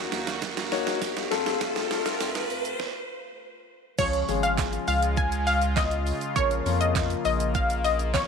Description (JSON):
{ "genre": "dance-pop", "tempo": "101 BPM", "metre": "4/4", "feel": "straight", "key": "unclear", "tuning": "A4 = 440 Hz", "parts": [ { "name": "warm concert grand piano", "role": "accompaniment", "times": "0.0-7.6 s", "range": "F3 to Db5", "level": "-30 LUFS", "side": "left 12 dB", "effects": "sidechain pumping" }, { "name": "sweeping resonant pad", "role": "sustained chords", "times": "0.0-8.3 s", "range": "C3 to Gb4", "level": "-34 LUFS", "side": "left 1 dB", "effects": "chorus, sidechain pumping" }, { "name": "round analog bass", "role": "bass", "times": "0.0-8.3 s", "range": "Ab1 to F2", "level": "-30 LUFS", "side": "equal", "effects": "sidechain pumping" }, { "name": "riser", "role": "sound effects", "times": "0.0-2.8 s", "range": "none", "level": "-33 LUFS", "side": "right 2 dB", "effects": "none" }, { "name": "pop drum kit", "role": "drums", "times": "0.1-8.3 s", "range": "crash cymbal, handclaps, hi-hat, kick drum, shaker, snare drum", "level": "-30 LUFS", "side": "right 5 dB", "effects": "overdrive" }, { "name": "tambourine", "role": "percussion", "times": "1.0-8.3 s", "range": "none", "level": "-41 LUFS", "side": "right 18 dB", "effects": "none" }, { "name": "analog pluck", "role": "melody", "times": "4.0-8.3 s", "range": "Db5 to Ab5", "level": "-26 LUFS", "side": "left 2 dB", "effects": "chorus, sidechain pumping, tape echo" } ], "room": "light reverb", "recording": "1960s-style stereo with parts hard left and right, high-pass filter", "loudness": "-23 LUFS", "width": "side -6 dB against mid", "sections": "0.0-4.0 A section; 4.0-8.3 B section", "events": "build-up 0.0-4.0; drum fill 0.0-2.8; riser 0.0-4.0; stop 2.8-4.0; drop 4.0-8.3", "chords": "0.0 Ebm; 1.3 F; 4.0 Db; 6.4 Bbm" }